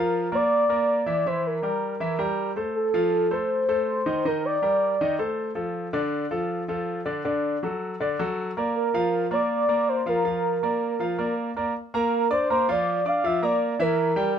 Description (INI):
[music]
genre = latin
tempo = 160 BPM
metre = 4/4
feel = straight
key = unclear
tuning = A4 = 440 Hz
[part]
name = reedy FM lead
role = melody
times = 0.0-5.2, 8.8-14.3 s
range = A4 to F5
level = -23 LUFS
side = equal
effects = chorus, tremolo, plate reverb
[part]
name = bright grand piano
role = accompaniment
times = 0.0-14.4 s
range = D3 to D6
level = -26 LUFS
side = equal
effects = none
[sound]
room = moderate small room reverb, RT60 0.5 s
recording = none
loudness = -22 LUFS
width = side -8 dB against mid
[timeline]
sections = 0.0-11.7 A section; 11.7-14.4 B section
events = none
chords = 0.0 Bb; 1.3 C7; 2.8 F; 4.3 Ebmaj7; 5.0 F7; 5.8 Dm; 7.3 D; 8.8 Bbadd9/F; 13.2 Bb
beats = 0.14 0.52 0.89 | 1.26 1.64 2.01 2.39 | 2.76 3.13 3.51 3.88 | 4.26 4.63 5.00 5.38 | 5.75 6.13 6.50 6.88 | 7.25 7.63 8.00 8.38 | 8.75 9.13 9.50 9.88 | 10.25 10.62 11.00 11.37 | 11.75 12.12 12.49 12.87 | 13.24 13.62 13.99 14.36